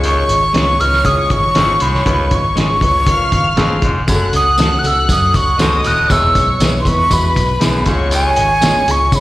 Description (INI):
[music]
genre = uptempo 1960s-style soul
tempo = 119 BPM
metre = 4/4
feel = straight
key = unclear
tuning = A4 = 440 Hz
[part]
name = warm studio violin section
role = second line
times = 0.0-9.2 s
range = B4 to F#6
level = -21 LUFS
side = left 1 dB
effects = slapback echo
[part]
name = clear concert grand piano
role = accompaniment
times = 0.0-9.2 s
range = G#3 to B4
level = -22 LUFS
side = left 2 dB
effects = slapback echo
[part]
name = raspy baritone saxophone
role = riff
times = 0.0-8.3 s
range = D#2 to A2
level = -22 LUFS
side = left 2 dB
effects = slapback echo
[part]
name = vintage muted fingered electric bass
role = bass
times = 0.0-9.2 s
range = D#1 to C#3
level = -18 LUFS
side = equal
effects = none
[part]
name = cloth-damped thuddy drum kit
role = drums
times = 0.0-9.2 s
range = hi-hat, kick drum, snare drum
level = -18 LUFS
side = equal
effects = none
[part]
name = breathy jazz flute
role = melody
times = 0.1-9.2 s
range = G#5 to F#6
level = -15 LUFS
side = right 1 dB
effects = slapback echo
[part]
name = electric guitar through a small old amp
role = stabs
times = 0.5-8.7 s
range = G#3 to A4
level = -26 LUFS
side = right 5 dB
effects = spring reverb, slapback echo
[part]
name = tambourine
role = percussion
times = 4.1-9.2 s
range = none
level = -27 LUFS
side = right 2 dB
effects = none
[sound]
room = light reverb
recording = live gig heard through the venue's PA, recital hall reverb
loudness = -11 LUFS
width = side -16 dB against mid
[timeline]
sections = 0.0-9.2 A section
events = none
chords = 0.0 C#; 4.1 F#m; 6.1 E; 7.9 C#